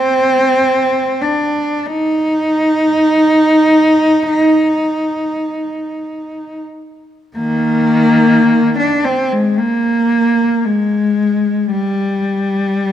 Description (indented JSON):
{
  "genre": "classical, free, expressive piece for unaccompanied cello",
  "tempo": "free time",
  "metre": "none",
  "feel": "none",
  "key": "Eb major",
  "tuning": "A4 = 440 Hz",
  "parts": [
    { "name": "warm cello", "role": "solo", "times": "0.0-12.9 s", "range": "Eb3 to Eb4", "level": "-12 LUFS", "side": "equal", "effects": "none" }
  ],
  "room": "light reverb",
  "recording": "none",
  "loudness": "-12 LUFS",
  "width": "side -10 dB against mid",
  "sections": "0.0-7.4 A section; 7.4-12.9 B section",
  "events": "none",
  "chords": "none",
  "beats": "free time"
}